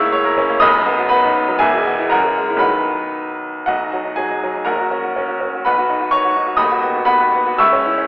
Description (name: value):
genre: classical, virtuoso piano study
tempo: 113-127 BPM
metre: 2/4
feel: rubato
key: B major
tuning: A4 = 440 Hz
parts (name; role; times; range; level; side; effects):
- clear baby grand piano; solo; 0.0-8.1 s; D#1 to E6; -14 LUFS; equal; none
room: wet scoring stage reverb, RT60 1.7 s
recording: heard from further back in the room, telephone sound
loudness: -14 LUFS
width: side -22 dB against mid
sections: 0.0-3.7 A section; 3.7-8.1 B section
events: none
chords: 0.0 A#dim/C#; 0.6 B; 1.6 E; 2.1 F#9; 2.6 B; 4.7 F#/A#; 5.7 B; 6.6 B/D#